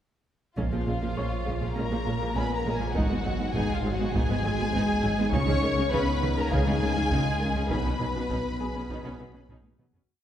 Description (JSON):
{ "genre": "cinematic, hybrid orchestral and electronic film score", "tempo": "101 BPM", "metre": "4/4", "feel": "straight", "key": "Bb phrygian", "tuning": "A4 = 440 Hz", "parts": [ { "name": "warm symphonic violin section", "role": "melody", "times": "0.6-9.5 s", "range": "F5 to Db6", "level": "-34 LUFS", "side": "left 2 dB", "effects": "none" }, { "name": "rich symphonic violin section", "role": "second line", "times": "0.6-9.5 s", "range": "F4 to Db5", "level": "-34 LUFS", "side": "left 2 dB", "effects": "none" }, { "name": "warm symphonic viola section", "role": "accompaniment", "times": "0.6-10.0 s", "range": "Db3 to Eb4", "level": "-34 LUFS", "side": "right 2 dB", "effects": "none" }, { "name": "mellow French horn section", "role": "sustained chords", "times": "0.6-9.5 s", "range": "F3 to Db4", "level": "-34 LUFS", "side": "left 1 dB", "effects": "none" }, { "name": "harp-like synth pluck", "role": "arpeggios", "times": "0.6-10.0 s", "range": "Db3 to B4", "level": "-35 LUFS", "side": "left 2 dB", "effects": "chorus, tape echo" }, { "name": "rich symphonic cello section", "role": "bass", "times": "0.6-10.0 s", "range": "Ab2 to Db3", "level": "-35 LUFS", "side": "right 2 dB", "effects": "none" }, { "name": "sub bass with octave", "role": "bass", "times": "0.6-10.1 s", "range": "Ab1 to Db2", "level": "-34 LUFS", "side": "equal", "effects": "none" }, { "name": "warm symphonic double bass section", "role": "bass", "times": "0.6-9.8 s", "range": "Ab1 to Db2", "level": "-34 LUFS", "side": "right 1 dB", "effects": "none" }, { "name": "taiko ensemble", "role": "drums", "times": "0.6-10.2 s", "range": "none", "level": "-33 LUFS", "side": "equal", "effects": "none" }, { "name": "felt-muted upright piano", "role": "texture", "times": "1.2-10.1 s", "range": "Ab4 to Db6", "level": "-42 LUFS", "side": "equal", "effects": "tape echo" } ], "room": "wet concert hall reverb, RT60 2.0 s", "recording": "heard from further back in the room", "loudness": "-24 LUFS", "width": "side -10 dB against mid", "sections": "0.6-10.1 theme", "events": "fade-out 7.7-10.1; drum fill 9.5-10.1", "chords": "0.6 Bbm7; 3.0 Abm7; 5.3 Dbsus2; 7.7 Badd9" }